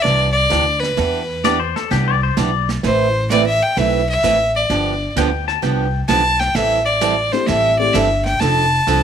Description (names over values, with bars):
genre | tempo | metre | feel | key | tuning
country, western swing | 129 BPM | 4/4 | swing 68% on 8ths | unclear | A4 = 440 Hz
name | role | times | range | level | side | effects
clear fiddle | melody | 0.0-9.0 s | B4 to A5 | -16 LUFS | left 1 dB | none
picked steel-string acoustic guitar | accompaniment | 0.0-9.0 s | C3 to B4 | -21 LUFS | right 12 dB | none
upright bass | bass | 0.0-9.0 s | F1 to E2 | -21 LUFS | equal | none
vintage brush drum kit | drums | 0.1-9.0 s | brushed snare drum, hi-hat, snare drum | -27 LUFS | right 6 dB | none
pedal steel guitar | second line | 1.4-6.0 s | G4 to A5 | -20 LUFS | left 13 dB | none
dark upright piano | accompaniment | 7.3-7.9 s | A3 to G4 | -22 LUFS | left 12 dB | none
room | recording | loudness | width
light reverb, small room ambience | 1960s-style stereo with parts hard left and right | -14 LUFS | side -8 dB against mid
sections
0.0-9.0 A section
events
none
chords
0.0 Cadd9; 1.0 Em7; 2.8 Amadd9; 4.7 G7; 6.6 Am7; 8.4 F6